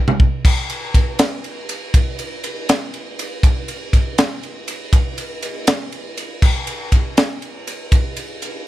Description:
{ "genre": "rock", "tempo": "80 BPM (dotted quarters)", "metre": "6/8", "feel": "straight", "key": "none", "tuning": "none", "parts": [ { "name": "crisp fusion drum kit", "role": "drums", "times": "0.1-8.5 s", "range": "crash cymbal, kick drum, ride cymbal, snare drum, toms", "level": "-16 LUFS", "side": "equal", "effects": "none" } ], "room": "light reverb", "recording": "none", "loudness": "-16 LUFS", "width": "side -15 dB against mid", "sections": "0.4-8.7 A section", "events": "drum fill 0.0-0.4", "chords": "none" }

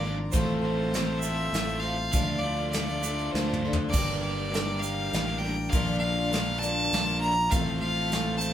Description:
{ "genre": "folk rock and heartland rock", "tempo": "100 BPM", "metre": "3/4", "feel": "straight", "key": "G minor", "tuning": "A4 = 441 Hz", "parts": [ { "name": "bright fiddle", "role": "melody", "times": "0.0-8.5 s", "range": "C5 to Bb5", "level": "-30 LUFS", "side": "equal", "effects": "none" }, { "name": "picked twelve-string acoustic guitar", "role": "accompaniment", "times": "0.0-8.5 s", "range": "G2 to Bb4", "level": "-34 LUFS", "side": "left 3 dB", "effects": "none" }, { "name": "hand-pumped harmonium", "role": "sustained chords", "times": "0.0-8.5 s", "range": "F4 to Bb5", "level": "-42 LUFS", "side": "equal", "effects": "none" }, { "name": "overdriven electric guitar", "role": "riff", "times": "0.0-8.5 s", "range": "G2 to G4", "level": "-34 LUFS", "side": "right 1 dB", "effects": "none" }, { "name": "fingered electric bass", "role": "bass", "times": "0.0-8.5 s", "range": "G1 to D2", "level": "-31 LUFS", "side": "equal", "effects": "none" }, { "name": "soft brush drum kit", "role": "drums", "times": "0.3-8.3 s", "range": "crash cymbal, hi-hat, kick drum, snare drum, toms", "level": "-30 LUFS", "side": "equal", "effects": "none" }, { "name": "tube shaker", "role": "percussion", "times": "0.3-8.5 s", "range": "none", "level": "-39 LUFS", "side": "right 7 dB", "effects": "none" } ], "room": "moderate studio reverb, RT60 0.6 s", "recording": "band playing live in one room", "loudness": "-25 LUFS", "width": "side -10 dB against mid", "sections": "0.0-8.5 A section", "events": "drum fill 3.3-3.9", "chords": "0.3 F/A; 2.1 Dm; 3.9 Gm; 5.7 Bb; 7.5 F/A" }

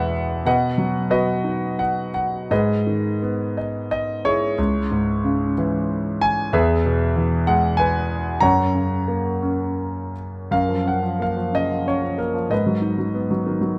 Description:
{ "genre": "classical, lyrical solo piano", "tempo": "81-97 BPM", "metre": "3/4", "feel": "rubato", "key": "F# major from 10.5 s", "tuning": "A4 = 443 Hz", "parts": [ { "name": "warm concert grand piano", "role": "solo", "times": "0.0-13.8 s", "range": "C#2 to A#5", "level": "-21 LUFS", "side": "equal", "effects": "none" } ], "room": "moderate recital hall reverb, RT60 1.5 s", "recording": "none", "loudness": "-21 LUFS", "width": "mono", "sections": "0.0-10.5 A section; 10.5-13.8 B section", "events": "none", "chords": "0.5 B; 2.5 G#m; 4.6 C#m; 6.5 E; 8.4 F#; 10.5 F#maj7; 12.5 G#m7" }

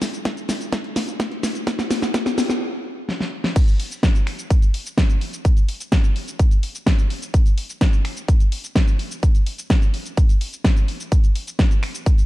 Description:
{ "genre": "EDM", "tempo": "127 BPM", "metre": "4/4", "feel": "straight", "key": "none", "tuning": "none", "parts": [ { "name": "big-room dance drum kit", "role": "drums", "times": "0.0-12.3 s", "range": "crash cymbal, finger snaps, hi-hat, shaker, snare drum", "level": "-24 LUFS", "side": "equal", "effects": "none" }, { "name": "electronic kick drum", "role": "drums", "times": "0.3-12.2 s", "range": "none", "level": "-16 LUFS", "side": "equal", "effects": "high-pass filter on kick" } ], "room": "light reverb, digital ambience", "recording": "dark, warm production", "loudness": "-18 LUFS", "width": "side -17 dB against mid", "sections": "0.0-3.6 A section; 3.6-12.3 B section", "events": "build-up 0.0-3.6; drum fill 0.0-2.6, 3.1-3.6; stop 2.6-3.6; drop 3.6-12.3", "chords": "none" }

